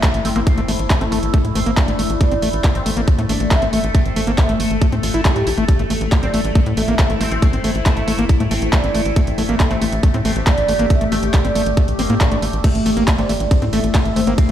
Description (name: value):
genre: psychedelic trance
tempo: 138 BPM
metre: 4/4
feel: straight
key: A phrygian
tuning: A4 = 440 Hz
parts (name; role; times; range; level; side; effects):
- oud; melody; 0.0-14.5 s; G3 to G4; -23 LUFS; right 1 dB; phaser, sidechain pumping, ping-pong delay
- overtone-sweeping drone; sustained chords; 0.0-14.5 s; A3 to A4; -25 LUFS; left 4 dB; chorus, built-in reverb, phaser, sidechain pumping
- overdriven acid bass; riff; 0.0-14.5 s; A3 to E4; -23 LUFS; left 1 dB; distortion, auto-pan, sidechain pumping, tape echo
- drum and bass drum kit; drums; 0.0-14.5 s; crash cymbal, handclaps, hi-hat, ride cymbal; -25 LUFS; equal; overdrive
- electronic kick drum; drums; 0.0-14.5 s; none; -14 LUFS; equal; overdrive
- downlifter and swell; sound effects; 0.0-2.2, 12.0-12.6 s; none; -37 LUFS; right 1 dB; none
- tight sequencer bass; bass; 0.1-14.5 s; A1 to A2; -22 LUFS; equal; none
- resonant blip pluck; second line; 0.2-14.3 s; A3 to C4; -32 LUFS; right 2 dB; phaser, sidechain pumping, high-pass filter, ping-pong delay
room: light reverb, digital ambience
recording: played on a big sound system in a bare room, large studio reverb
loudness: -14 LUFS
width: side -11 dB against mid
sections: 0.0-14.5 A section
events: none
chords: 0.0 A5